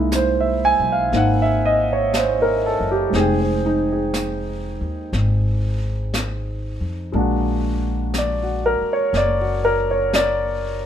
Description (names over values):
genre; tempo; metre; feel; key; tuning
jazz ballad; 60 BPM; 4/4; swing 68% on 8ths; unclear; A4 = 440 Hz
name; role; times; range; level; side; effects
warm grand piano; accompaniment; 0.0-10.9 s; G#3 to G#5; -19 LUFS; right 1 dB; none
upright bass; bass; 0.0-10.9 s; F1 to F2; -23 LUFS; equal; none
jazz brush drum kit; drums; 0.1-10.9 s; brushed snare drum, hi-hat, snare drum; -28 LUFS; left 1 dB; none
room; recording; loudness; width
light reverb; minimal, uncompressed stereo recording; -18 LUFS; side -9 dB against mid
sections
0.0-10.9 A section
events
none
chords
0.0 C7alt; 3.1 Fm9; 7.1 Bbaug7